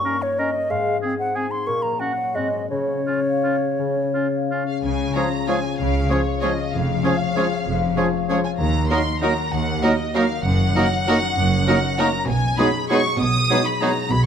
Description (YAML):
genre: classical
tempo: 158-212 BPM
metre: 3/4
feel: rubato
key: Db major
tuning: A4 = 440 Hz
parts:
  - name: concert flute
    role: second line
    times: 0.0-13.9 s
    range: Db5 to Eb6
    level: -26 LUFS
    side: right 1 dB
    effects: none
  - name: mellow clarinet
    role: second line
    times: 0.0-13.9 s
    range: Bb3 to Db4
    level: -30 LUFS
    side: equal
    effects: none
  - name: concert harp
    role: arpeggios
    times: 0.0-14.3 s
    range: Gb2 to F5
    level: -25 LUFS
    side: left 8 dB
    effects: none
  - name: warm oboe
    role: second line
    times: 0.1-13.9 s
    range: F4 to Bb4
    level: -30 LUFS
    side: right 2 dB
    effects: none
  - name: mellow bassoon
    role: accompaniment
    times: 0.7-13.9 s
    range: Db3 to Bb3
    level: -28 LUFS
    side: right 4 dB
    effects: none
  - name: warm symphonic violin section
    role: melody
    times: 4.7-14.3 s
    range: Db5 to D#6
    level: -25 LUFS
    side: left 1 dB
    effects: none
  - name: clear symphonic cello section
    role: bass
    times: 4.8-14.3 s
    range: Eb2 to Db3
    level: -27 LUFS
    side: right 2 dB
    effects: none
  - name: warm symphonic double bass section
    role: bass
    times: 4.8-14.3 s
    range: F1 to Eb2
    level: -25 LUFS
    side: right 3 dB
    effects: none
  - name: dark French horn section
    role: sustained chords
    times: 5.1-13.9 s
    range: F3 to D#4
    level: -30 LUFS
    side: left 2 dB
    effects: none
  - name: warm symphonic violin section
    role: second line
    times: 5.2-13.9 s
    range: F4 to Db5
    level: -29 LUFS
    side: left 1 dB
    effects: none
  - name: warm symphonic viola section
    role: accompaniment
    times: 5.2-13.9 s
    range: Ab3 to Eb4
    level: -28 LUFS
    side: right 3 dB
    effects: none
room: light reverb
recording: close, detailed microphones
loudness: -18 LUFS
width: side -8 dB against mid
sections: 0.0-4.8 A section; 4.8-14.3 B section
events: none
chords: 0.0 Eb7/G; 0.7 Ab; 1.7 Gb/Bb; 2.4 Ab7; 2.7 Db; 6.7 Db/F; 8.6 Ebm; 10.5 Ebm/Gb; 12.3 G#m7/B